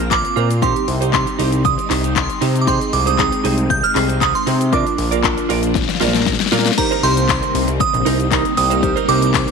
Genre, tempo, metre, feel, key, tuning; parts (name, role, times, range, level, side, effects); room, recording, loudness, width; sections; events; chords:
dance-pop; 117 BPM; 4/4; straight; A4 = 440 Hz
glassy synth bell; melody; 0.0-9.5 s; Bb5 to G6; -20 LUFS; right 5 dB; chorus, phaser, tape echo
phased string machine; sustained chords; 0.0-9.5 s; C3 to F4; -24 LUFS; left 1 dB; ensemble chorus, phaser, sidechain pumping
direct-recorded clean electric guitar; riff; 0.0-9.5 s; Eb4 to D5; -23 LUFS; right 13 dB; lush chorus
fat analog bass; bass; 0.0-9.5 s; Bb1 to C3; -19 LUFS; left 1 dB; sidechain pumping
pop drum kit; drums; 0.1-9.5 s; crash cymbal, handclaps, hi-hat, kick drum, shaker, snare drum; -20 LUFS; left 7 dB
warm analog keys; accompaniment; 0.6-9.5 s; C4 to C5; -23 LUFS; right 1 dB; chorus
tambourine; percussion; 6.8-9.5 s; -36 LUFS; left 18 dB
light reverb, digital ambience; 1960s-style stereo with parts hard left and right; -14 LUFS; side -5 dB against mid
0.0-6.8 A section; 6.8-9.5 B section
drum fill 5.8-6.8
0.0 Bbsus2; 0.6 Cm; 2.7 Ab/C; 4.7 Bb; 6.8 Cm7